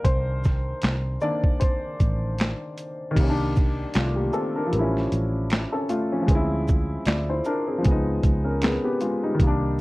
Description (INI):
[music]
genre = lo-fi hip hop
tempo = 77 BPM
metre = 4/4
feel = swing 57% on 16ths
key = unclear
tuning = A4 = 440 Hz
[part]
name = warm upright piano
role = accompaniment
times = 0.0-9.8 s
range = Eb3 to G5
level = -25 LUFS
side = left 1 dB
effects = cassette tape
[part]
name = fingered electric bass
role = bass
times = 0.0-9.8 s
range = A1 to D2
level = -26 LUFS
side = equal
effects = none
[part]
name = boom bap sampler-style drum kit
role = drums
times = 0.0-9.6 s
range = crash cymbal, handclaps, hi-hat, kick drum, shaker, snare drum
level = -23 LUFS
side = equal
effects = none
[part]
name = finger snaps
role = percussion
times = 4.0-8.8 s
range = none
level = -38 LUFS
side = right 5 dB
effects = none
[sound]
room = light reverb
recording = cassette tape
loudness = -21 LUFS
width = side -20 dB against mid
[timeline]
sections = 0.0-3.2 A section; 3.2-9.8 A section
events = upright piano solo 0.0-3.2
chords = 0.0 Cm9; 4.7 A7b13; 6.3 Dm7b5; 7.8 Db9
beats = | 0.05 0.83 1.61 2.39 | 3.17 3.95 4.72 5.50 | 6.28 7.06 7.84 8.62 | 9.40